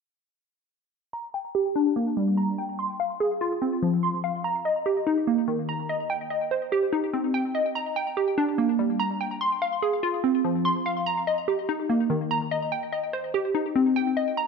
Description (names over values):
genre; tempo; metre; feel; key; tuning
hip hop; 145 BPM; 4/4; half-time; G phrygian; A4 = 440 Hz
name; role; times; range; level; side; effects
glassy wavetable pluck; arpeggios; 1.1-14.5 s; Eb3 to C6; -23 LUFS; equal; chorus, low-pass filter, ping-pong delay
room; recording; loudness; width
moderate lush hall reverb, RT60 2.4 s; none; -23 LUFS; side -5 dB against mid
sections
1.1-7.8 A section; 7.8-14.5 B section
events
filter sweep on synth pluck 1.1-7.8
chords
1.1 Gm; 2.8 Fm; 4.4 Eb; 6.1 Cm; 7.8 Gm; 9.4 Fm; 11.1 Eb; 12.7 Cm